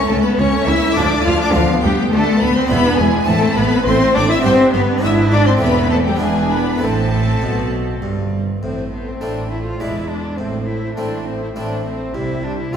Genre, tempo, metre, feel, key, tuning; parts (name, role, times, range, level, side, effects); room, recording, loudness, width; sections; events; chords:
classical, baroque-style concerto movement with solo episodes; 102 BPM; 3/4; straight; A minor; A4 = 441 Hz
rich cello; melody; 0.0-12.8 s; F3 to F4; -18 LUFS; left 1 dB
rich chamber violin section; melody; 0.0-12.8 s; E5 to F6; -25 LUFS; left 3 dB
rich symphonic violin section; second line; 0.0-12.8 s; F4 to F5; -24 LUFS; left 2 dB
harpsichord; accompaniment; 0.0-12.8 s; C#2 to G4; -25 LUFS; equal
rich chamber viola section; accompaniment; 0.0-12.8 s; F3 to E4; -25 LUFS; right 3 dB
rich chamber double bass section; bass; 0.1-12.8 s; E1 to D2; -23 LUFS; right 2 dB
warm studio cello section; bass; 0.1-12.8 s; C#2 to C3; -24 LUFS; right 2 dB
wet concert hall reverb, RT60 1.7 s; heard from further back in the room; -14 LUFS; side -8 dB against mid
0.0-8.6 A section; 8.6-12.8 B section
0.0 A/C#; 1.0 Dm; 1.5 Bdim/D; 2.7 E7; 3.3 Am; 4.5 G; 5.0 E7/G#; 5.6 Am/E; 6.2 E7; 6.8 Am; 9.8 E7; 10.4 Am; 12.1 C